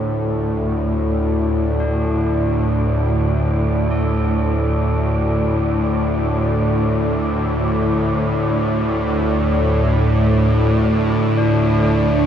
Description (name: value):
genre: dark ambient drone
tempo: free time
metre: none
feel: none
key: unclear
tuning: A4 = 439 Hz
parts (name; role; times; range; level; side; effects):
- tubular bells; arpeggios; 0.0-12.3 s; D4 to A4; -32 LUFS; left 2 dB; ping-pong delay
- bowed-like drone; drone; 0.0-12.3 s; D2 to A2; -16 LUFS; equal; built-in reverb
- wind-like tuned noise texture; texture; 0.0-12.3 s; D5; -28 LUFS; right 2 dB; built-in reverb
- deep dark ambient pad; sustained chords; 11.6-12.3 s; D4 to A4; -23 LUFS; right 1 dB; chorus, built-in reverb
room: wet huge ambient reverb, RT60 8.8 s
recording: dark, warm production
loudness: -16 LUFS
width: side -9 dB against mid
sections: 0.0-12.3 A section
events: fade-in on synth texture 0.0-12.3; fade-in on tubular bells 0.0-12.3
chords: 0.0 D5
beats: free time